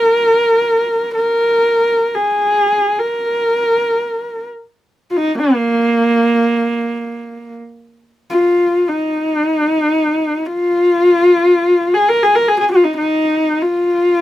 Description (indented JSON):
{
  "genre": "mongolian traditional, Mongolian folk",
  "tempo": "free time",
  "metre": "none",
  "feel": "none",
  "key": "unclear",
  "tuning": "A4 = 440 Hz",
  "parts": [
    { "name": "warm horsehead fiddle", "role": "solo", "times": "0.0-14.2 s", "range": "Bb3 to Bb4", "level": "-12 LUFS", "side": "equal", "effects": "none" }
  ],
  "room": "little or no reverb",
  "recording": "none",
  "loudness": "-12 LUFS",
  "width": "side -14 dB against mid",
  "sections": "0.0-8.0 A section; 8.0-14.2 A section",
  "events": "none",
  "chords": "none",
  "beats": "free time"
}